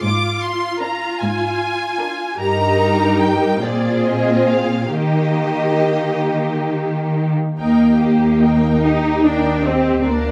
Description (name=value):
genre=classical, slow romantic movement for string orchestra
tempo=44-51 BPM (dotted quarters)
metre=6/8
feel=rubato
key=Eb major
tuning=A4 = 441 Hz
part: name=rich symphonic violin section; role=melody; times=0.0-10.3 s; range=D5 to D6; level=-26 LUFS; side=equal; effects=none
part: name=warm symphonic viola section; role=accompaniment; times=0.0-10.3 s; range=D4 to G4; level=-27 LUFS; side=equal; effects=none
part: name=rich symphonic cello section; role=bass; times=0.0-10.3 s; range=G2 to Eb4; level=-20 LUFS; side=equal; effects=none
part: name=warm symphonic violin section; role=second line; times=0.8-10.3 s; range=Bb3 to Bb4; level=-24 LUFS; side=equal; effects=none
part: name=rich symphonic double bass section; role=bass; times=7.6-10.3 s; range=D2 to Eb2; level=-23 LUFS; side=equal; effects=none
room=moderate recital hall reverb, RT60 1.3 s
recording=none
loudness=-17 LUFS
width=mono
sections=0.0-7.6 A section; 7.6-10.3 B section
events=none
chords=0.0 Bb7/Ab; 2.4 Eb/G; 3.6 Bbsus2; 4.9 Eb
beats=| 0.04 1.22 | 2.40 3.63 | 4.94 6.28 | 7.59 8.82 | 10.06